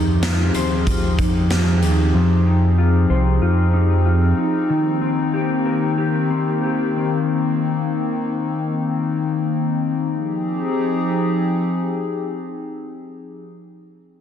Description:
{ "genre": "dream pop", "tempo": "80-94 BPM", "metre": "4/4", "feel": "straight", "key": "F minor", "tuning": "A4 = 440 Hz", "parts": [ { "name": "hollow soft pad", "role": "sustained chords", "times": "0.0-13.4 s", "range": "Eb3 to Ab4", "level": "-20 LUFS", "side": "left 3 dB", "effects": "chorus" }, { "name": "mellow electric guitar", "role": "arpeggios", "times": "0.0-7.9 s", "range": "Eb3 to C5", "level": "-23 LUFS", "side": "left 1 dB", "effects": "analog chorus, ping-pong delay" }, { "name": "chorused synth bass", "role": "bass", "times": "0.0-4.3 s", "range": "C2 to F2", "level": "-17 LUFS", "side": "right 1 dB", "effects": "none" }, { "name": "raw garage drum kit", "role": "drums", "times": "0.2-2.0 s", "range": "hi-hat, kick drum, snare drum", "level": "-23 LUFS", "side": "right 1 dB", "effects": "none" } ], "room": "light reverb, small room ambience", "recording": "dense, heavily limited modern master", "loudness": "-17 LUFS", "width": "side -9 dB against mid", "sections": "0.0-10.1 A section; 10.1-13.1 B section", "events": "slowing down 4.7-10.1", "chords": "0.0 Fm7; 4.7 Cm7/Eb; 10.1 Fm7" }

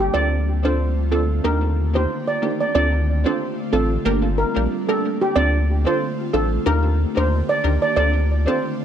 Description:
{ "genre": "dancehall", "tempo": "92 BPM", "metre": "4/4", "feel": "swing 56% on 16ths", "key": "D phrygian", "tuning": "A4 = 436 Hz", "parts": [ { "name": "steel pan", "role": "melody", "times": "0.0-8.6 s", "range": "G4 to D5", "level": "-23 LUFS", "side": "right 2 dB", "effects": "tape echo" }, { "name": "ethereal airy pad", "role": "sustained chords", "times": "0.0-8.8 s", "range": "D3 to G4", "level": "-27 LUFS", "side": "equal", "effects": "ensemble chorus, built-in reverb" }, { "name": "warm sub bass", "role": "bass", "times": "0.0-8.5 s", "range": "G1 to Eb2", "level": "-20 LUFS", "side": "equal", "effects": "none" }, { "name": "punchy chord stab", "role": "accompaniment", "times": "0.1-8.7 s", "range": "Bb3 to Bb4", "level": "-24 LUFS", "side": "right 2 dB", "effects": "chorus, tape echo" } ], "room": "light reverb", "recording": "echo-heavy mix", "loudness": "-18 LUFS", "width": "side -9 dB against mid", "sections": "0.0-2.7 A section; 2.7-8.8 B section", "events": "break 2.1-2.7", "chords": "0.1 Dm7; 1.4 Ebmaj7; 2.7 Dm7; 4.1 Gm; 5.4 Dm7; 6.7 Ebmaj7; 8.0 Dm7" }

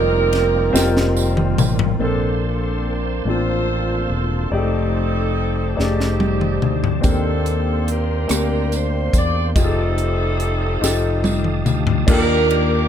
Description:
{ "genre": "slow gospel", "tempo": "48 BPM (dotted quarters)", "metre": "6/8", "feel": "straight", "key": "Bb major", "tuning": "A4 = 439 Hz", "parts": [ { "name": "clear saxophone section", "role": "melody", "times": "0.0-12.9 s", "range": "C4 to D5", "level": "-23 LUFS", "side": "right 3 dB", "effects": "tape echo" }, { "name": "clear grand piano", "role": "accompaniment", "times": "0.0-12.9 s", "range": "Bb2 to D5", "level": "-23 LUFS", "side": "left 4 dB", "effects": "none" }, { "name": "bright tonewheel organ", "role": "sustained chords", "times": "0.0-12.9 s", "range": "Eb3 to Eb6", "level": "-30 LUFS", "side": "right 2 dB", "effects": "fast rotary speaker, chorus vibrato" }, { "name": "fingered electric bass", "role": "bass", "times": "0.0-12.9 s", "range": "E1 to E2", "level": "-21 LUFS", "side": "equal", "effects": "none" }, { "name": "crisp fusion drum kit", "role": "drums", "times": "0.3-2.0, 5.8-12.7 s", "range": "crash cymbal, hi-hat, kick drum, ride cymbal, rim click, snare drum, toms", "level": "-21 LUFS", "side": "left 1 dB", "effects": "none" }, { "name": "tambourine", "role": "percussion", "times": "0.8-2.0, 7.0-12.5 s", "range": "none", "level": "-29 LUFS", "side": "right 6 dB", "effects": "none" }, { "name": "mellow French horn section", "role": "sustained chords", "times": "2.0-12.1 s", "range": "C3 to D5", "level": "-32 LUFS", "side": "right 1 dB", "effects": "none" } ], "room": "little or no reverb", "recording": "none", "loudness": "-16 LUFS", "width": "side -9 dB against mid", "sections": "0.0-2.0 A section; 2.0-12.1 B section", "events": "drum fill 0.7-2.0, 5.8-7.0, 10.8-12.1", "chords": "0.0 F9sus4; 2.0 Bbmaj9; 4.5 F13; 7.0 Cm9/Eb; 9.6 F9; 12.1 Ebmaj9" }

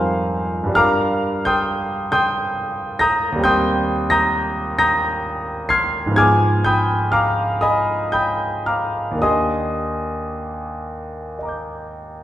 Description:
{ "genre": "classical, impressionist solo piano", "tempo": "52-68 BPM", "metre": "3/4", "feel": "rubato", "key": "Eb major", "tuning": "A4 = 440 Hz", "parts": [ { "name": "clear concert grand piano", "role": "solo", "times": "0.0-12.2 s", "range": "Eb2 to C7", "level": "-17 LUFS", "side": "equal", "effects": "none" } ], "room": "wet recital hall reverb, RT60 1.5 s", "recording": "heard from further back in the room", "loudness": "-17 LUFS", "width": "side -12 dB against mid", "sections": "0.0-12.2 A section", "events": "none", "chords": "0.0 Fm11; 0.8 Gm7; 3.5 Eb6; 6.2 Abm6; 9.2 Ebmaj7" }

